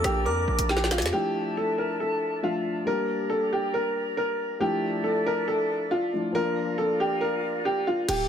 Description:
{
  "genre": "hip hop, drill",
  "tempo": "138 BPM",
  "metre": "4/4",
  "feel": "half-time",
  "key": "D minor",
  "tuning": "A4 = 440 Hz",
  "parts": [
    { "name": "warm upright piano", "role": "melody", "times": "0.0-8.3 s", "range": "F4 to Bb4", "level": "-26 LUFS", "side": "equal", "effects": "digital delay" },
    { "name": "delicate synth tine bell", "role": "second line", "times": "0.0-1.1 s", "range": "D6 to E6", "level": "-36 LUFS", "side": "right 4 dB", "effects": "chorus, digital delay" },
    { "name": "dark baby grand piano", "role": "accompaniment", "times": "0.0-8.1 s", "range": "F3 to E5", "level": "-32 LUFS", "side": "left 4 dB", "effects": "none" },
    { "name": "breathy small flute group", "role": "sustained chords", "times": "0.0-8.3 s", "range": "D4 to D6", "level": "-34 LUFS", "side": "right 1 dB", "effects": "none" },
    { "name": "distorted 808-style bass", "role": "bass", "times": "0.0-1.1, 8.1-8.3 s", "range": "D1 to F2", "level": "-28 LUFS", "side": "right 1 dB", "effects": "distortion" },
    { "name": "drill drum kit", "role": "drums", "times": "0.0-1.2, 8.1-8.2 s", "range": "crash cymbal, hi-hat, rim click, snare drum", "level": "-28 LUFS", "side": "equal", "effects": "none" }
  ],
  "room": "light reverb, small room reverb",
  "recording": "none",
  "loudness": "-24 LUFS",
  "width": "side -8 dB against mid",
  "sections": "0.0-1.1 A section; 1.1-8.1 B section",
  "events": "drum fill 0.7-1.1",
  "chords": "0.0 Bb; 1.1 Dmadd9; 2.9 Gm; 4.6 Dmadd9; 6.3 Bb"
}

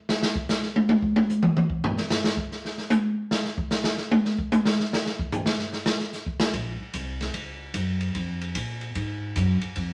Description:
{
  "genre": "jazz, small-group swing and bop",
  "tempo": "149 BPM",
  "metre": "4/4",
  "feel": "swing 65% on 8ths",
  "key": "Bb minor",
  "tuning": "A4 = 440 Hz",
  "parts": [
    { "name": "open jazz drum kit", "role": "drums", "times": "0.1-9.9 s", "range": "hi-hat, kick drum, ride cymbal, snare drum, toms", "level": "-26 LUFS", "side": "equal", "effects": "none" },
    { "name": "upright bass", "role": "bass", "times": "6.5-9.9 s", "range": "Bb1 to Bb2", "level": "-30 LUFS", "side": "equal", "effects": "none" }
  ],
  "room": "wet studio reverb, RT60 0.8 s",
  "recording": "none",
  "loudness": "-26 LUFS",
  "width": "mono",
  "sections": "0.0-6.5 A section; 6.5-9.9 B section",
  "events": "drum solo 0.0-6.5",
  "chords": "none"
}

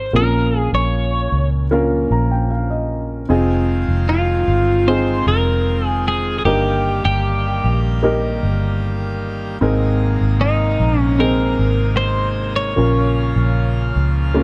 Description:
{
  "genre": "pop",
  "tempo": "76 BPM",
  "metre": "4/4",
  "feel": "straight",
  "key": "Ab major",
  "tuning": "A4 = 440 Hz",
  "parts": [
    { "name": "twelve-string electric guitar", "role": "melody", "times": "0.0-14.4 s", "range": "Eb4 to Db5", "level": "-23 LUFS", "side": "equal", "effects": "subtle chorus" },
    { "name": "warm baby grand piano", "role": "accompaniment", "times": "0.0-14.4 s", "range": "G2 to Bb5", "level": "-23 LUFS", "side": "equal", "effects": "none" },
    { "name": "vintage muted fingered electric bass", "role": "bass", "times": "0.0-14.4 s", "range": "F1 to Db2", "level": "-21 LUFS", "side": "equal", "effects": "none" },
    { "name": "pipe organ, full organ", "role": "sustained chords", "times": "3.3-14.4 s", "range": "C3 to G4", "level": "-28 LUFS", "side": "equal", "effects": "none" }
  ],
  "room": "light reverb",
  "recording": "dark, warm production",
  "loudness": "-18 LUFS",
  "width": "mono",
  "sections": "0.0-14.4 A section",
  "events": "grand piano fill 1.7-3.3",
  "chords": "0.1 Bbm; 3.3 Fm7; 6.5 Eb/G; 9.6 Abadd9; 12.8 Bbm"
}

